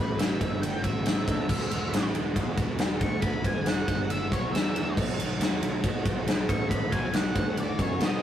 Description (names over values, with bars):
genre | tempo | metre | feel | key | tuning
blues rock power trio and southern rock | 138 BPM | 4/4 | straight | E mixolydian | A4 = 436 Hz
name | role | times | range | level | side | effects
octave-fuzz lead guitar | melody | 0.0-8.2 s | B4 to C#6 | -34 LUFS | equal | distortion
overdriven tonewheel organ | sustained chords | 0.0-8.2 s | D#4 to D5 | -40 LUFS | right 2 dB | none
fuzz fingered electric bass | bass | 0.0-8.2 s | E1 to B2 | -32 LUFS | equal | overdrive
big rock drum kit | drums | 0.2-8.1 s | crash cymbal, kick drum, ride cymbal, snare drum | -26 LUFS | equal | none
room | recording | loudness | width
light reverb | rough rehearsal-room recording | -25 LUFS | side -10 dB against mid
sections
0.0-8.2 A section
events
lead electric guitar solo 0.0-8.2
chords
0.0 A7; 1.5 E7; 5.0 B7